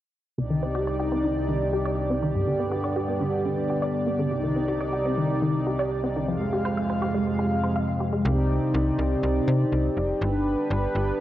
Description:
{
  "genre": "pop",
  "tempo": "122 BPM",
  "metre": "4/4",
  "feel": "straight",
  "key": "C minor",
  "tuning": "A4 = 440 Hz",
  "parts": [
    { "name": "chorused pulse-width pad", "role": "sustained chords", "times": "0.4-11.2 s", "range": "C2 to F5", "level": "-24 LUFS", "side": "equal", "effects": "none" },
    { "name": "resonant blip pluck", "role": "arpeggios", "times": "0.4-8.2 s", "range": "G2 to F5", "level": "-29 LUFS", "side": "left 1 dB", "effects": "chorus, phaser, analog delay" },
    { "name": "slap-like FM bass", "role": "bass", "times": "8.2-11.1 s", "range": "F1 to C3", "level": "-25 LUFS", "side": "equal", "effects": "none" }
  ],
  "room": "moderate lush hall reverb, RT60 2.7 s",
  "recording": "home recording on cassette",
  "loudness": "-23 LUFS",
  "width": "side -13 dB against mid",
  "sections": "0.4-8.2 A section; 8.2-11.2 B section",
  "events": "none",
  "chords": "0.4 Cmadd9; 2.3 G; 4.3 Cmadd9; 6.3 Fmadd9; 8.2 Cmadd9; 10.2 G",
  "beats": "| 0.38 0.87 1.36 1.85 | 2.35 2.84 3.33 3.82 | 4.31 4.81 5.30 5.79 | 6.28 6.77 7.26 7.76 | 8.25 8.74 9.23 9.72 | 10.22 10.71 11.20"
}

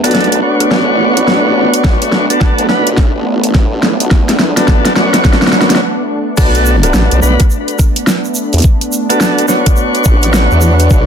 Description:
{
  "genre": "glitch hop",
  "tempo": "106 BPM",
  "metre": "4/4",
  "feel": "swing 62% on 16ths",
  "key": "B minor",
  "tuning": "A4 = 440 Hz",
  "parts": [
    { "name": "warm analog pad", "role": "sustained chords", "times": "0.0-11.1 s", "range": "A3 to D4", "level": "-17 LUFS", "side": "equal", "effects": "chorus, sidechain pumping" },
    { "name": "tonewheel organ", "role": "stabs", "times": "0.0-11.1 s", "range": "B3 to C#5", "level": "-14 LUFS", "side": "equal", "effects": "slow rotary speaker, sidechain pumping, low-pass filter, ping-pong delay" },
    { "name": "formant-sweep wobble bass", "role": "bass", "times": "0.0-11.1 s", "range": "A1 to F#2", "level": "-14 LUFS", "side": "equal", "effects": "chorus, high-pass filter" },
    { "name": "pop drum kit", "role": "drums", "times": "0.0-10.9 s", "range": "crash cymbal, hi-hat, rim click, snare drum", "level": "-14 LUFS", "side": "equal", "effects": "overdrive" },
    { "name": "electronic kick drum", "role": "drums", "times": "1.8-11.0 s", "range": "none", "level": "-10 LUFS", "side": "equal", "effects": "overdrive" },
    { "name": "egg shaker", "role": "percussion", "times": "6.4-11.0 s", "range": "none", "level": "-23 LUFS", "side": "right 4 dB", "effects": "none" }
  ],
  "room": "light reverb, digital ambience",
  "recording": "dense, heavily limited modern master",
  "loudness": "-9 LUFS",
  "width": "side -7 dB against mid",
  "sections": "0.0-6.4 A section; 6.4-11.1 B section",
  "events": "build-up 0.0-6.4; drum fill 0.0-5.8; break 5.8-6.4; drop 6.4-11.1",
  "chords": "0.0 Bm7",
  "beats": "0.15 0.71 1.28 | 1.85 2.41 2.98 3.54 | 4.11 4.68 5.24 5.81 | 6.38 6.94 7.51 8.07 | 8.64 9.21 9.77 10.34 | 10.90"
}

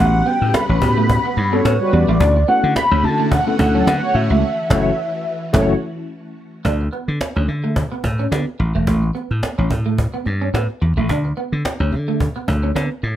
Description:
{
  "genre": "early-eighties boogie funk",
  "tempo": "108 BPM",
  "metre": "4/4",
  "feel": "swing 56% on 16ths",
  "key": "D major",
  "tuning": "A4 = 439 Hz",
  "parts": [
    { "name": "warm velvety synth lead", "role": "melody", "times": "0.0-6.1 s", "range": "C#5 to B5", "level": "-19 LUFS", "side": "equal", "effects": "chorus, slapback echo" },
    { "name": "tine electric piano", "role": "accompaniment", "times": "0.0-5.7 s", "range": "A3 to A4", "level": "-21 LUFS", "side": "left 2 dB", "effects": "medium stereo tremolo" },
    { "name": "phased string machine", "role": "sustained chords", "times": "0.0-6.6 s", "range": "C#3 to F#5", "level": "-28 LUFS", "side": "equal", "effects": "ensemble chorus, phaser" },
    { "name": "electric guitar at the edge of break-up", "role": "riff", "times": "0.0-13.1 s", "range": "A3 to D4", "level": "-24 LUFS", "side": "right 3 dB", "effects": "analog chorus" },
    { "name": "slap bass", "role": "bass", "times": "0.0-13.2 s", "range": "E1 to D3", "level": "-18 LUFS", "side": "equal", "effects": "none" },
    { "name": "cajon", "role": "drums", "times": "0.3-13.1 s", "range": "none", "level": "-22 LUFS", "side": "equal", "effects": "none" },
    { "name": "mellow synth brass", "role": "second line", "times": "1.5-5.7 s", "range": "F#3 to C#5", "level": "-24 LUFS", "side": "equal", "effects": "chorus" }
  ],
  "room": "moderate studio reverb, RT60 0.7 s",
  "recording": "none",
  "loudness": "-15 LUFS",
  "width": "side -12 dB against mid",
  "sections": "0.0-6.6 A section; 6.6-13.2 B section",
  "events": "band accent 4.4-6.6",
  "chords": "0.0 A13; 2.2 Dmaj7; 4.4 F#m7; 6.6 D5; 8.6 Asus2; 11.1 D5",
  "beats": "0.54 1.09 1.65 | 2.20 2.76 3.31 3.87 | 4.43 4.98 5.54 6.09 | 6.65 7.20 7.76 8.31 | 8.87 9.43 9.98 10.54 | 11.09 11.65 12.20 12.76"
}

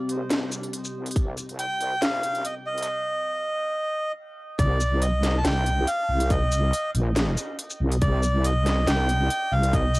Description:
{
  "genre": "deep dubstep",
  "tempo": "140 BPM",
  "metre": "4/4",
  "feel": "swing 54% on 16ths, half-time",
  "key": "C minor",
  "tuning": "A4 = 435 Hz",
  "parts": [
    { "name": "dark analog pad", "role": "sustained chords", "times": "0.0-2.9 s", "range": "C4 to G4", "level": "-34 LUFS", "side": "left 1 dB", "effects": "chorus, cassette tape" },
    { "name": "wobble bass", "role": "bass", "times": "0.1-10.0 s", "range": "Bb1 to C2", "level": "-23 LUFS", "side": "equal", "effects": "chorus, high-pass filter" },
    { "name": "garage drum kit", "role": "drums", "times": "0.1-10.0 s", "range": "hi-hat, shaker, snare drum", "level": "-29 LUFS", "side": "equal", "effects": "none" },
    { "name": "electronic kick drum", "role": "drums", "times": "1.2-1.3, 4.6-9.8 s", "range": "none", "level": "-25 LUFS", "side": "equal", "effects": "none" },
    { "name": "melodica", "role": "melody", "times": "1.6-10.0 s", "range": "D5 to A5", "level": "-27 LUFS", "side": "equal", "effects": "cassette tape, dub echo" }
  ],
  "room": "light reverb",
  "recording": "home recording on cassette",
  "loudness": "-22 LUFS",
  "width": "side -22 dB against mid",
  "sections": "0.0-4.6 A section; 4.6-10.0 B section",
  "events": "build-up 0.0-4.6; filter sweep on analog synth pad 0.0-4.6; drop 4.6-10.0",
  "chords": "0.0 Cm",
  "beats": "0.30 0.73 | 1.16 1.59 2.02 2.45 | 2.88 3.30 3.73 4.16 | 4.59 5.02 5.45 5.88 | 6.30 6.73 7.16 7.59 | 8.02 8.45 8.88 9.30 | 9.73"
}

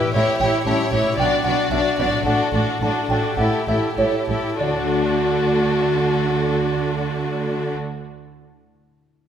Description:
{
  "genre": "cinematic, playful, whimsical film cue",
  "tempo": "95-118 BPM",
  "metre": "4/4",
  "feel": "straight",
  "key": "D major",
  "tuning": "A4 = 439 Hz",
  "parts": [
    { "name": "music box", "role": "melody", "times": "0.0-7.7 s", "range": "C#5 to A5", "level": "-26 LUFS", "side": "right 3 dB", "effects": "none" },
    { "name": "warm chamber violin section", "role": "melody", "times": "0.0-7.7 s", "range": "A4 to D5", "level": "-25 LUFS", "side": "left 3 dB", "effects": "none" },
    { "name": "rich chamber violin section", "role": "second line", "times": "0.0-7.7 s", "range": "F#4 to G4", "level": "-28 LUFS", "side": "left 2 dB", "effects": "none" },
    { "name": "rich chamber viola section", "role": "accompaniment", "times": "0.0-7.7 s", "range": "D4 to E4", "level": "-26 LUFS", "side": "right 1 dB", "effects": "none" },
    { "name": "concert harp", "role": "arpeggios", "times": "0.0-8.5 s", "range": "A2 to F#5", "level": "-30 LUFS", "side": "left 6 dB", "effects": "none" },
    { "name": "warm chamber cello section", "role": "bass", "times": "0.1-7.7 s", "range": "A2 to D3", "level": "-27 LUFS", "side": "right 5 dB", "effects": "none" },
    { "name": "warm studio double bass section", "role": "bass", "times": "0.1-7.7 s", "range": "A1 to D2", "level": "-28 LUFS", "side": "right 3 dB", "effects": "none" },
    { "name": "mellow French horn section", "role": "sustained chords", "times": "0.7-7.7 s", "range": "F#3 to F#4", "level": "-24 LUFS", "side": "left 1 dB", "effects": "none" }
  ],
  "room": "wet scoring stage reverb, RT60 1.7 s",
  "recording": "none",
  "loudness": "-18 LUFS",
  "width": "side -9 dB against mid",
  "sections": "0.0-4.6 A section; 4.6-9.3 B section",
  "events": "slowing down 0.0-4.6",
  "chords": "0.1 A7; 1.2 Bm; 2.3 D/A; 3.4 A7; 4.6 D",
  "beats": "| 0.15 0.67 1.19 1.72 | 2.26 2.81 3.38 3.98 | 4.60 5.21 5.81 6.42 | 7.02 7.63 8.24"
}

